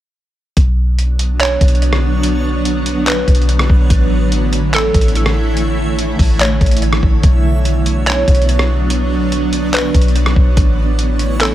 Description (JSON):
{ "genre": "hip hop, atmospheric cloud-rap", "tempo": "144 BPM", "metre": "4/4", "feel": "half-time", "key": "B minor", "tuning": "A4 = 440 Hz", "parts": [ { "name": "granular cloud pad", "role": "sustained chords", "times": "1.1-11.5 s", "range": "C#3 to E4", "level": "-19 LUFS", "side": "right 1 dB", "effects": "built-in reverb, sidechain pumping" }, { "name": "soft 808-style bass", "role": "bass", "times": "0.6-11.5 s", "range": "A1 to B1", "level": "-15 LUFS", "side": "equal", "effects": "none" }, { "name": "lo-fi sampler-style drum kit", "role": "drums", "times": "0.6-11.5 s", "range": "handclaps, hi-hat, kick drum, rim click", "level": "-15 LUFS", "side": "equal", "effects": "none" }, { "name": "backwards swelling texture", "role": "texture", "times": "1.6-11.5 s", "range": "A3 to C#5", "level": "-26 LUFS", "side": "right 2 dB", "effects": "built-in reverb" }, { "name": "hollow square pluck", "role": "melody", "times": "1.4-11.5 s", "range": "A4 to C#5", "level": "-22 LUFS", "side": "equal", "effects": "chorus, digital delay" } ], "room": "digital ambience", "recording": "none", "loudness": "-11 LUFS", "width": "side -13 dB against mid", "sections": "0.6-11.5 A section", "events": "none", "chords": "0.6 Bmadd9; 3.9 A; 7.2 Bmadd9; 10.6 A" }